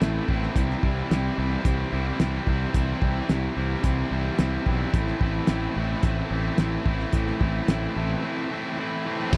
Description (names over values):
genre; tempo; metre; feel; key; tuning
classic rock; 109 BPM; 4/4; straight; A minor; A4 = 440 Hz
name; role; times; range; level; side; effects
distorted electric guitar; riff; 0.0-9.4 s; A2 to E4; -33 LUFS; equal; distortion
tight distorted guitar; riff; 0.0-9.4 s; A2 to E4; -34 LUFS; equal; distortion
fuzz fingered electric bass; bass; 0.0-9.4 s; A1 to C2; -30 LUFS; equal; overdrive
cloth-damped thuddy drum kit; drums; 0.0-9.4 s; crash cymbal, hi-hat, kick drum, snare drum; -26 LUFS; equal; none
room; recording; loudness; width
little or no reverb; dry, close 1970s-style studio recording; -25 LUFS; mono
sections
0.0-9.3 A section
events
none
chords
0.0 Am; 0.6 C; 4.9 Am